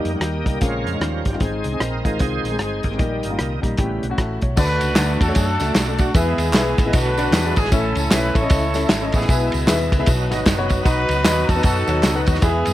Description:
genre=uptempo gospel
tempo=153 BPM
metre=4/4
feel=swing 61% on 8ths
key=Eb major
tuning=A4 = 443 Hz
part: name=warm grand piano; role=accompaniment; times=0.0-12.7 s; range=Ab2 to Bb5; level=-24 LUFS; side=left 2 dB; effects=none
part: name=bright tonewheel organ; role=sustained chords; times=0.0-12.7 s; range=Db3 to C5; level=-28 LUFS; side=right 2 dB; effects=slow rotary speaker, overdrive, chorus vibrato
part: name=hollow-body short-scale fingered electric bass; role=bass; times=0.0-12.7 s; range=F#1 to F#2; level=-24 LUFS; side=equal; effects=none
part: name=warm soul drum kit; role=drums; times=0.1-12.7 s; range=crash cymbal, hi-hat, kick drum, ride cymbal, rim click, snare drum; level=-20 LUFS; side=equal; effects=none
part: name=mellow horn section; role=melody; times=4.6-12.7 s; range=B3 to C#5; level=-22 LUFS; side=equal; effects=none
part: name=tambourine and handclaps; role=percussion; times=4.6-12.7 s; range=none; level=-29 LUFS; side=right 2 dB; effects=none
room=light reverb, small room ambience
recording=none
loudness=-17 LUFS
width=side -14 dB against mid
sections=0.0-4.6 A section; 4.6-12.7 B section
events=tonewheel organ solo 0.0-4.6; grand piano fill 3.4-4.6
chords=0.0 Eb; 0.6 Bbm7; 1.0 Eb9; 1.4 Ab; 3.0 Eb; 3.8 A7; 4.6 D; 6.1 E; 6.9 Bm7; 7.3 E9; 7.7 A; 9.3 E/B; 10.1 B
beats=0.22 0.62 1.01 | 1.41 1.81 2.20 2.60 | 3.00 3.39 3.79 4.18 | 4.58 4.97 5.36 5.75 | 6.15 6.54 6.93 7.32 | 7.72 8.11 8.50 8.89 | 9.29 9.68 10.07 10.46 | 10.86 11.25 11.64 12.04 | 12.43

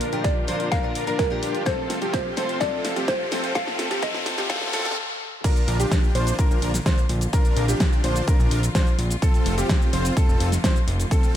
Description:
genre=EDM, festival progressive house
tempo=127 BPM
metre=4/4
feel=straight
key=Bb major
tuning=A4 = 442 Hz
part: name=mallet-like synth pluck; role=melody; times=0.0-4.9 s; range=Bb4 to F5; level=-29 LUFS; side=equal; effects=chorus, phaser, ping-pong delay
part: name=picked steel-string acoustic guitar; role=accompaniment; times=0.0-5.0 s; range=Bb2 to Bb4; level=-34 LUFS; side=left 2 dB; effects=sidechain pumping, ping-pong delay
part: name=clear symphonic string section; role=sustained chords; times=0.0-11.4 s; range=C3 to Bb4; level=-35 LUFS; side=equal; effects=none
part: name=clear grand piano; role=arpeggios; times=0.0-11.4 s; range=G4 to C5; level=-31 LUFS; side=left 1 dB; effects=sidechain pumping, low-pass filter, ping-pong delay
part: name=dense compressed supersaw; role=riff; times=0.0-11.4 s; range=C4 to C5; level=-29 LUFS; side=equal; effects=sidechain pumping, low-pass filter, ping-pong delay
part: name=big-room dance drum kit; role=drums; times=0.0-11.3 s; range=crash cymbal, hi-hat, shaker, snare drum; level=-29 LUFS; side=equal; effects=high-pass filter on hats, high-pass filter on snare, high-pass filter on cymbals, high-pass filter on perc
part: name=riser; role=sound effects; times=0.3-5.0 s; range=none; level=-32 LUFS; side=left 2 dB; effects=none
part: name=electronic kick drum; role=drums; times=0.2-11.2 s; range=none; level=-21 LUFS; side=equal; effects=none
part: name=fat analog bass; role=bass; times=5.7-11.1 s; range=F1 to Bb1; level=-23 LUFS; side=equal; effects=sidechain pumping
room=light reverb, digital ambience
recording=high-pass filter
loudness=-20 LUFS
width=side -11 dB against mid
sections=0.0-5.4 A section; 5.4-11.4 B section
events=build-up 0.0-5.4; drum fill 0.0-5.0; filter sweep on grand piano 0.0-5.4; filter sweep 0.0-5.4; riser 0.3-5.0; stop 5.0-5.4; drop 5.4-11.4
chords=0.0 Bb; 1.7 F; 5.4 Bb; 9.2 F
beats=0.25 0.72 1.19 | 1.66 2.14 2.61 3.08 | 3.55 4.03 4.50 4.97 | 5.44 5.92 6.39 6.86 | 7.33 7.80 8.28 8.75 | 9.22 9.70 10.17 10.64 | 11.11

